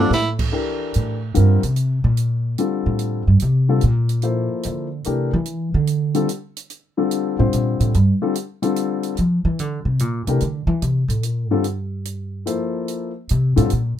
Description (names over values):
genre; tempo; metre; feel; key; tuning
modal jazz; 146 BPM; 3/4; swing 67% on 8ths; C mixolydian; A4 = 440 Hz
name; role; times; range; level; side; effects
warm concert grand piano; accompaniment; 0.0-13.7 s; D3 to C5; -22 LUFS; left 5 dB; none
upright bass; bass; 0.0-14.0 s; G2 to F3; -18 LUFS; equal; none
open jazz drum kit; drums; 0.1-13.8 s; crash cymbal, hi-hat, kick drum, snare drum; -29 LUFS; right 5 dB; none
room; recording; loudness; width
little or no reverb; close, detailed microphones; -18 LUFS; side -10 dB against mid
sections
0.5-14.0 A section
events
upright bass solo 0.5-14.0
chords
0.0 Csus4; 0.5 C13sus4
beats
0.11 | 0.52 0.93 1.34 | 1.76 2.17 2.58 | 2.99 3.40 3.81 | 4.23 4.64 5.05 | 5.46 5.88 6.29 | 6.70 7.11 7.52 | 7.94 8.35 8.76 | 9.17 9.59 10.00 | 10.41 10.82 11.23 | 11.64 12.06 12.47 | 12.88 13.29 13.70